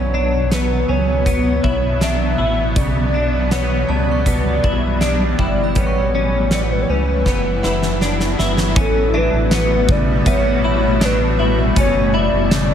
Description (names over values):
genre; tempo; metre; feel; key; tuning
dream pop; 80 BPM; 4/4; straight; unclear; A4 = 440 Hz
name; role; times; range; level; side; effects
warbly nostalgic lead; melody; 0.0-12.7 s; A4 to E5; -22 LUFS; left 1 dB; chorus, tremolo, digital delay
granular cloud pad; sustained chords; 0.0-12.7 s; B2 to F#4; -20 LUFS; equal; built-in reverb
direct-recorded clean electric guitar; arpeggios; 0.0-12.7 s; C#3 to E4; -23 LUFS; left 2 dB; ensemble chorus, digital delay
round analog bass; bass; 0.0-12.7 s; F#1 to C#2; -20 LUFS; equal; none
synth chime; texture; 0.0-11.2 s; E5 to C#6; -34 LUFS; right 3 dB; ensemble chorus, digital delay
huge arena drum kit; drums; 0.5-12.7 s; hi-hat, kick drum, snare drum, tambourine; -22 LUFS; equal; none
room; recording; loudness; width
light reverb, small room ambience; none; -14 LUFS; side -9 dB against mid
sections
0.0-8.8 A section; 8.8-12.7 B section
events
drum fill 7.3-8.8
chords
0.0 Bm; 2.8 Gmaj7/B; 5.8 A7; 7.3 F#7sus4; 8.8 A13; 11.8 F#m7